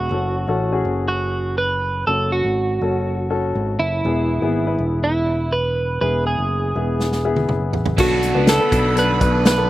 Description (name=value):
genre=piano-driven pop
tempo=122 BPM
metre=4/4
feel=straight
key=unclear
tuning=A4 = 438 Hz
part: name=twelve-string electric guitar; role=melody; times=0.0-9.7 s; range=E4 to B4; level=-21 LUFS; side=right 2 dB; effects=none
part: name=warm grand piano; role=accompaniment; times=0.0-9.7 s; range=B2 to B4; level=-24 LUFS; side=left 5 dB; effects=none
part: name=picked electric bass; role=bass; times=0.0-9.7 s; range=E1 to C#2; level=-22 LUFS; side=equal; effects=none
part: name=natural country drum kit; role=drums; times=7.0-9.6 s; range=crash cymbal, hi-hat, kick drum, snare drum, toms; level=-20 LUFS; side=equal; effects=none
part: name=clear studio string section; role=sustained chords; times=8.0-9.7 s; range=A3 to B5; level=-32 LUFS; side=left 2 dB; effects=none
part: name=biting overdriven guitar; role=riff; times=8.0-9.7 s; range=B2 to A4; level=-24 LUFS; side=right 6 dB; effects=phaser
room=little or no reverb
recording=recorded outdoors, with no room sound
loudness=-17 LUFS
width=side -15 dB against mid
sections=0.0-8.0 A section; 8.0-9.7 B section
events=drum fill 7.0-8.0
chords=0.1 F#m; 4.0 E; 8.0 Bm7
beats=| 0.11 0.60 1.09 1.59 | 2.08 2.57 3.06 3.55 | 4.05 4.54 5.03 5.52 | 6.01 6.50 7.00 7.49 | 7.98 8.47 8.96 9.46